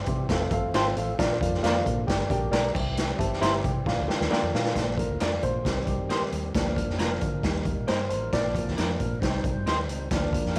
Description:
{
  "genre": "uptempo 1960s-style soul",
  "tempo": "134 BPM",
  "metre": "4/4",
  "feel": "straight",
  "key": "Bb major",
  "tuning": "A4 = 440 Hz",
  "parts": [
    { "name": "dark upright piano", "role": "accompaniment", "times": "0.0-10.6 s", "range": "F3 to C6", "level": "-32 LUFS", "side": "equal", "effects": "none" },
    { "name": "percussive tonewheel organ", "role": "sustained chords", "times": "0.0-10.6 s", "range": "D3 to C5", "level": "-38 LUFS", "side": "equal", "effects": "overdrive, slow rotary speaker" },
    { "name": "vintage muted fingered electric bass", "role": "bass", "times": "0.1-10.6 s", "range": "F1 to D3", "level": "-34 LUFS", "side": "equal", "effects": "none" },
    { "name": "raw garage drum kit", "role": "drums", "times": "0.1-10.6 s", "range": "crash cymbal, hi-hat, kick drum, snare drum", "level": "-30 LUFS", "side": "equal", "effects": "none" },
    { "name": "clean electric guitar", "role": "stabs", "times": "0.7-10.6 s", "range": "Bb3 to C5", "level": "-34 LUFS", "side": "equal", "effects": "none" }
  ],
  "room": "light reverb, studio reverb",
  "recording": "vinyl crackle",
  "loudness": "-26 LUFS",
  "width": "mono",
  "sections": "0.0-4.8 A section; 4.8-10.6 B section",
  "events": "drum fill 3.9-4.8; upright piano solo 4.8-10.6",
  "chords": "0.3 F; 1.2 Bb; 2.1 Gm; 2.7 C; 3.9 Bb; 5.6 Cm; 6.5 Bb/D; 7.4 Eb; 8.3 Bb; 9.2 Cm"
}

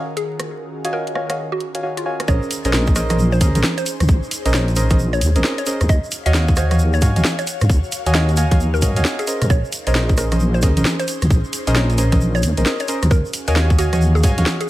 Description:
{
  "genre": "UK garage, two-step garage",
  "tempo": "133 BPM",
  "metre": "4/4",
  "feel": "swing 63% on 16ths",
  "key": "Bb minor",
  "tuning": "A4 = 441 Hz",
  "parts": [
    { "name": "airy breathy pad", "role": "sustained chords", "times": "0.0-14.7 s", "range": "Eb3 to F5", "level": "-32 LUFS", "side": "equal", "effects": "chorus, phaser, sidechain pumping" },
    { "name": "mallet-like synth pluck", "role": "melody", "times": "0.2-14.7 s", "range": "F4 to Eb5", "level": "-27 LUFS", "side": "equal", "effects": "chorus, phaser, ping-pong delay" },
    { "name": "garage drum kit", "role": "drums", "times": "0.2-14.7 s", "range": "congas, hi-hat, rim click, snare drum", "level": "-22 LUFS", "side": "equal", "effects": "overdrive, studio reverb" },
    { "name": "deep mellow chord stab", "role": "stabs", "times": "0.8-14.4 s", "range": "Db4 to Ab5", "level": "-24 LUFS", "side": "right 1 dB", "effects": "chorus, tape echo" },
    { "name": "deep soft wobble bass", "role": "bass", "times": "2.3-14.5 s", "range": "Bb1 to Ab2", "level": "-17 LUFS", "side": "equal", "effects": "chorus, sidechain pumping" },
    { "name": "electronic kick drum", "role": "drums", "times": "2.3-14.4 s", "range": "none", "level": "-16 LUFS", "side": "equal", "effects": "overdrive, studio reverb" },
    { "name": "tube shaker", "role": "percussion", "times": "2.3-14.7 s", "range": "none", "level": "-32 LUFS", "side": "right 2 dB", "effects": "none" }
  ],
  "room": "digital ambience",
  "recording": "vinyl crackle",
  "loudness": "-15 LUFS",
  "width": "side -16 dB against mid",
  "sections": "0.0-2.3 A section; 2.3-14.7 B section",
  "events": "drop 2.3-14.7",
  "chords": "0.0 Ebm11; 2.3 Bbm11; 5.9 Ebm11; 9.5 Bbm11; 13.1 Ebm11"
}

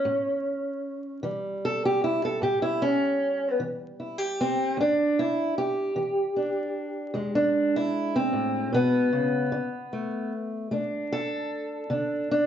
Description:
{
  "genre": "acoustic country blues, solo or duo",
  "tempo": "51 BPM (dotted quarters)",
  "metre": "12/8",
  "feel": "straight",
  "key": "A mixolydian",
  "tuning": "A4 = 440 Hz",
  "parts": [
    { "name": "fingerpicked steel-string acoustic guitar", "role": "solo", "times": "0.0-12.5 s", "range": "E2 to A4", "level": "-24 LUFS", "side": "equal", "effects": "none" }
  ],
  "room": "wet studio reverb, RT60 0.9 s",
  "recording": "heard from further back in the room, vinyl crackle, nothing above 7.6 kHz",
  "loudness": "-24 LUFS",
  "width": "side -9 dB against mid",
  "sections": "0.0-12.5 A section",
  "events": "steel-string acoustic guitar solo 0.0-12.5",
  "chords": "0.0 A7; 4.8 E7; 9.5 D5"
}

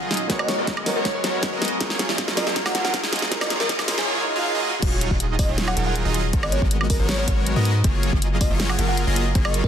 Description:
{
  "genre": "future bass",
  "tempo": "159 BPM",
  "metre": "4/4",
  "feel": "half-time",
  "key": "F# major",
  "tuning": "A4 = 440 Hz",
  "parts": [
    { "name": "warm baby grand piano", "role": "accompaniment", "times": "0.0-4.8 s", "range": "D#3 to C#5", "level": "-31 LUFS", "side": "right 2 dB", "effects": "sidechain pumping, ping-pong delay" },
    { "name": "ethereal airy pad", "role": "sustained chords", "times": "0.1-9.7 s", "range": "D#2 to A#5", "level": "-35 LUFS", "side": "equal", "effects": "none" },
    { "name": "big bright polysynth", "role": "riff", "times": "0.0-9.7 s", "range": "F#3 to E#5", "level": "-25 LUFS", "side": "right 1 dB", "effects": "sidechain pumping, ping-pong delay" },
    { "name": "riser and swell", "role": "sound effects", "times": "2.2-4.8 s", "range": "none", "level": "-33 LUFS", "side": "right 2 dB", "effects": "none" },
    { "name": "pop drum kit", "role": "drums", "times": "0.1-9.6 s", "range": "crash cymbal, hi-hat, snare drum, woodblock", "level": "-25 LUFS", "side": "equal", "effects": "none" },
    { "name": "electronic kick drum", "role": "drums", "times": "0.3-9.7 s", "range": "none", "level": "-23 LUFS", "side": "equal", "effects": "none" },
    { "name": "bell-like FM electric piano", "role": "melody", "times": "0.4-9.7 s", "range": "G#4 to F#5", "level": "-30 LUFS", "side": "equal", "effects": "chorus, sidechain pumping, ping-pong delay" },
    { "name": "long sustained 808-style bass", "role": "bass", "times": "4.8-9.7 s", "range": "D#1 to G#2", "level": "-23 LUFS", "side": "equal", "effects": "sidechain pumping" }
  ],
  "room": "moderate digital room reverb, RT60 1.0 s",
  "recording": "dense, heavily limited modern master, high-pass filter",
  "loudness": "-19 LUFS",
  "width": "side -9 dB against mid",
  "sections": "0.0-4.8 A section; 4.8-9.7 B section",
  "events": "build-up 0.0-4.8; drum fill 0.0-4.1; filter sweep on analog polysynth 0.0-4.8; swell 4.1-4.8; drop 4.8-9.7",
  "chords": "0.3 G#m11; 1.8 F#maj9; 4.8 D#m11; 6.3 G#m11; 7.8 F#maj9"
}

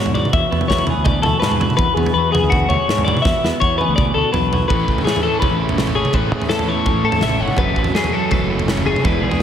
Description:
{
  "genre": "math rock and midwest emo",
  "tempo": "165 BPM",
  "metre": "4/4",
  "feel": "straight",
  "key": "A major",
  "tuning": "A4 = 441 Hz",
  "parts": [
    { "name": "twelve-string electric guitar", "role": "accompaniment", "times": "0.0-9.4 s", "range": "F#2 to G#4", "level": "-24 LUFS", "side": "right 5 dB", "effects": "none" },
    { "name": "twelve-string electric guitar", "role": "arpeggios", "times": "0.0-9.4 s", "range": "F#4 to F#5", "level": "-19 LUFS", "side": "left 4 dB", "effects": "tape echo" },
    { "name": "fuzz fingered electric bass", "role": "bass", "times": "0.0-9.4 s", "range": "E1 to A2", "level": "-23 LUFS", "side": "equal", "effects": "overdrive" },
    { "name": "modern studio drum kit", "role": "drums", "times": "0.1-9.4 s", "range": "kick drum, snare drum, toms", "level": "-19 LUFS", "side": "equal", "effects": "none" },
    { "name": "overdriven electric guitar", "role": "riff", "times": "4.7-9.4 s", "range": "E3 to D5", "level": "-23 LUFS", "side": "right 1 dB", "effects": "slapback echo" }
  ],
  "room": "moderate lush hall reverb, RT60 2.2 s",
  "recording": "big arena sound",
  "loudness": "-15 LUFS",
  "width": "side -9 dB against mid",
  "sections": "0.0-4.7 A section; 4.7-9.4 B section",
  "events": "drum fill 3.2-4.7",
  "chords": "0.0 E9; 4.7 Amaj9; 7.6 F#m11"
}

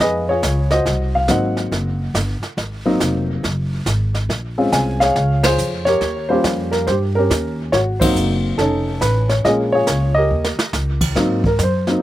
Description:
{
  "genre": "jazz piano trio",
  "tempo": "140 BPM",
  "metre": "4/4",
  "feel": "swing 65% on 8ths",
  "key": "Ab mixolydian",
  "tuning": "A4 = 439 Hz",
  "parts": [
    { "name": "dark baby grand piano", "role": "melody", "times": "0.0-12.0 s", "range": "F3 to Ab5", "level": "-18 LUFS", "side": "equal", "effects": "none" },
    { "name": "upright bass", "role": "bass", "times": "0.0-12.0 s", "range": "F1 to Ab2", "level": "-20 LUFS", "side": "equal", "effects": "none" },
    { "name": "jazz brush drum kit", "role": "drums", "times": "0.0-12.0 s", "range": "brushed snare drum, crash cymbal, hi-hat, kick drum, ride cymbal, snare drum", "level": "-23 LUFS", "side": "right 1 dB", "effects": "none" }
  ],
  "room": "little or no reverb",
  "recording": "recorded outdoors, with no room sound",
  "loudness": "-16 LUFS",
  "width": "side -14 dB against mid",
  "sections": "0.0-11.2 A section",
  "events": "band accent 5.4, 7.9; drum fill 10.3-10.7",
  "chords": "0.0 Db7; 0.9 Ab7; 4.3 Bbm7; 6.0 Eb7; 7.7 Ab7; 8.6 Faug7; 9.4 Bbm7; 10.3 Eb7; 11.2 Ab7"
}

